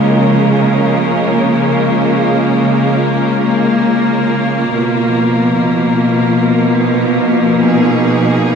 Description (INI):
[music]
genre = ambient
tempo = 52 BPM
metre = 4/4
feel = straight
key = G# dorian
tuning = A4 = 439 Hz
[part]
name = bright studio string section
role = sustained chords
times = 0.0-8.6 s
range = B2 to A#4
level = -11 LUFS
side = equal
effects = none
[part]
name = muted felt-like synth keys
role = arpeggios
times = 0.0-4.7 s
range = E#3 to D#5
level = -22 LUFS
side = left 1 dB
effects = none
[sound]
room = wet huge ambient reverb, RT60 7.8 s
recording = none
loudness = -10 LUFS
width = side -6 dB against mid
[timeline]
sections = 0.0-4.7 A section; 4.7-8.6 B section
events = none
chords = 0.0 A#m7; 4.7 G#m69